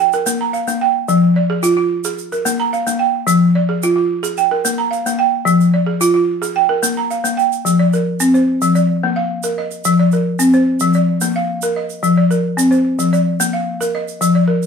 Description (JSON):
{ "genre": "west african traditional, West African string and xylophone music", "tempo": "110 BPM", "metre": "4/4", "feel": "straight", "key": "F dorian", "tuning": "A4 = 440 Hz", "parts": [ { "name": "balafon", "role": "arpeggios", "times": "0.0-14.7 s", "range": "F3 to Bb5", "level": "-14 LUFS", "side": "equal", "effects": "none" }, { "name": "tube shaker", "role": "percussion", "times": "0.1-14.7 s", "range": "none", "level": "-23 LUFS", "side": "right 7 dB", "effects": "none" } ], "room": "wet studio reverb, RT60 0.8 s", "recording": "band playing live in one room", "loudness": "-13 LUFS", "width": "side -6 dB against mid", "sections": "0.0-7.7 A section; 7.7-14.7 B section", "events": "none", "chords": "0.0 Bb5; 1.1 Fm; 2.2 Bb5; 3.3 Fm; 4.4 Bb5; 5.5 Fm; 6.6 Bb5; 7.7 F5; 8.8 Bb; 9.8 F5; 10.9 Bb; 12.0 F5; 13.1 Bb", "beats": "0.54 | 1.08 1.63 2.18 2.73 | 3.28 3.83 4.37 4.92 | 5.47 6.02 6.56 7.11 | 7.66 8.21 8.75 9.30 | 9.85 10.39 10.94 11.49 | 12.03 12.58 13.13 13.67 | 14.22" }